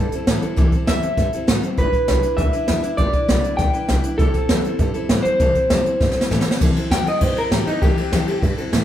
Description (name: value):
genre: rockabilly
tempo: 198 BPM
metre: 4/4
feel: straight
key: C major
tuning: A4 = 439 Hz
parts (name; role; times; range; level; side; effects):
- electric guitar through a small old amp; melody; 0.0-8.4 s; Eb4 to G5; -22 LUFS; equal; spring reverb
- picked steel-string acoustic guitar; accompaniment; 0.0-8.8 s; C3 to B4; -25 LUFS; left 2 dB; none
- upright bass; bass; 0.0-8.8 s; G1 to A2; -22 LUFS; equal; none
- jazz brush drum kit; drums; 0.1-8.8 s; crash cymbal, hi-hat, kick drum, ride cymbal, snare drum; -20 LUFS; equal; none
room: moderate large studio reverb, RT60 0.9 s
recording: band playing live in one room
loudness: -16 LUFS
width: side -11 dB against mid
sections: 0.0-6.6 A section; 6.6-8.8 B section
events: drum fill 6.0-6.6; clean electric guitar solo 6.6-8.8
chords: 0.0 C6; 1.8 G6; 4.2 C6